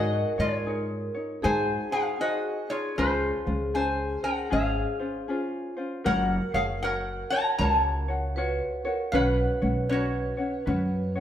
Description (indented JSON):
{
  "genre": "Hawaiian",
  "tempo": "78 BPM",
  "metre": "4/4",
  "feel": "swing 63% on 8ths",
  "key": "Db major, F# major from 6.1 s",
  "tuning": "A4 = 440 Hz",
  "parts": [
    { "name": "lap resonator guitar", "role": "melody", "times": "0.0-11.2 s", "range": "F4 to A#5", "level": "-28 LUFS", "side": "equal", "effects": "none" },
    { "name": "vibraphone with soft mallets", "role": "second line", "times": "0.0-11.2 s", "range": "F4 to B4", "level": "-33 LUFS", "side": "right 1 dB", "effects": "none" },
    { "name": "ukulele", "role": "accompaniment", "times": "0.0-11.2 s", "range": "Db4 to Db5", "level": "-31 LUFS", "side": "left 2 dB", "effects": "none" },
    { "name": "upright bass", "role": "bass", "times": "0.0-11.2 s", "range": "F#1 to Ab2", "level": "-29 LUFS", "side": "equal", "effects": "none" }
  ],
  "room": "wet large studio reverb, RT60 1.3 s",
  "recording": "band playing live in one room",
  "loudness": "-25 LUFS",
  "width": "side -10 dB against mid",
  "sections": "0.0-6.1 A section; 6.1-11.2 B section",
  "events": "none",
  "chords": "0.0 Ab7sus4; 1.4 Ab7; 3.0 Dbmaj7; 6.1 F#maj7; 9.1 Bsus2"
}